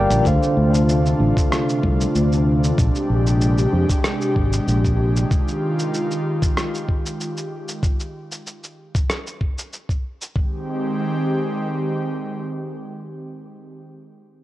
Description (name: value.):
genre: sunset chillout.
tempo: 95 BPM.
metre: 4/4.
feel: swing 53% on 16ths.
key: Ab lydian.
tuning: A4 = 438 Hz.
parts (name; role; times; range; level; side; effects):
bell-like tine electric piano; accompaniment; 0.0-2.8 s; D3 to G5; -22 LUFS; equal; fast stereo tremolo, auto-pan, digital delay.
airy breathy pad; sustained chords; 0.0-13.6 s; C3 to F5; -23 LUFS; equal; chorus.
mellow fretless electric bass; bass; 0.0-5.2 s; Ab1 to F2; -18 LUFS; equal; wide subtle chorus.
dusty soul sampler-style drum kit; drums; 0.1-10.3 s; hi-hat, rim click, shaker; -27 LUFS; equal; none.
electronic kick drum; drums; 0.3-10.5 s; none; -21 LUFS; equal; none.
room: light reverb, digital ambience.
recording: worn, warbling old tape, cassette tape, warbly pitch drift.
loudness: -18 LUFS.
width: side -15 dB against mid.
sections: 0.3-10.4 A section; 10.4-12.9 B section.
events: none.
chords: 0.3 Dm7; 2.8 Bb13; 5.3 Fm9; 7.8 N.C.; 10.4 Abmaj7.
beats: | 0.25 0.88 1.52 2.15 | 2.78 3.41 4.04 4.67 | 5.30 5.94 6.57 7.20 | 7.83 8.46 9.09 9.73 | 10.36 10.99 11.62 12.25.